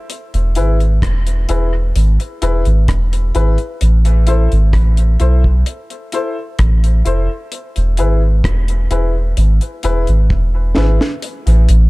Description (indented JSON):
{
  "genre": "dub reggae",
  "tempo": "65 BPM",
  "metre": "4/4",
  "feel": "straight",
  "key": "unclear",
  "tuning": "A4 = 443 Hz",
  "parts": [
    { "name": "deep reggae drum kit", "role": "drums", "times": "0.1-11.9 s", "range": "hi-hat, kick drum, rim click, snare drum", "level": "-20 LUFS", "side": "equal", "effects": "none" },
    { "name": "soft dub sub bass", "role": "bass", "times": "0.3-11.9 s", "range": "E1 to B1", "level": "-12 LUFS", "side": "equal", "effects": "none" },
    { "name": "dark upright piano", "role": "stabs", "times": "0.6-11.0 s", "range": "E4 to C5", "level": "-23 LUFS", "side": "left 4 dB", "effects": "dub echo" }
  ],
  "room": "small room ambience",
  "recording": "dark, warm production",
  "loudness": "-12 LUFS",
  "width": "side -22 dB against mid",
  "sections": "0.0-11.2 A section",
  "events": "drum fill 10.3-11.2",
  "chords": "0.1 E; 3.8 Am; 7.5 E; 11.2 N.C."
}